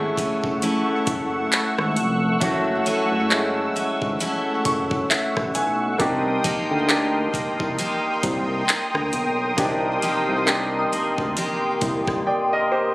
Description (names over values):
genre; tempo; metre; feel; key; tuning
contemporary R&B; 67 BPM; 4/4; swing 58% on 16ths; unclear; A4 = 440 Hz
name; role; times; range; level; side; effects
clear baby grand piano; accompaniment; 0.0-12.9 s; Ab3 to Ab5; -26 LUFS; equal; none
warm analog pad; sustained chords; 0.0-12.9 s; A3 to E6; -24 LUFS; equal; chorus, sidechain pumping
picked steel-string acoustic guitar; arpeggios; 0.0-12.9 s; C3 to A4; -27 LUFS; left 1 dB; digital delay
fat analog bass; bass; 0.0-12.2 s; F1 to D2; -27 LUFS; equal; none
smooth R&B drum kit; drums; 0.2-12.3 s; handclaps, hi-hat, kick drum, rim click; -24 LUFS; equal; none
glassy wavetable pluck; texture; 1.5-12.1 s; Bb5 to F6; -31 LUFS; equal; chorus, digital delay
room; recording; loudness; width
light reverb, digital ambience; recorded on a phone in the room, studio reverb; -20 LUFS; side -20 dB against mid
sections
0.0-12.9 A section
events
grand piano fill 4.7-6.0; silent gap 12.3-12.9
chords
0.0 F#m7; 6.0 Cm7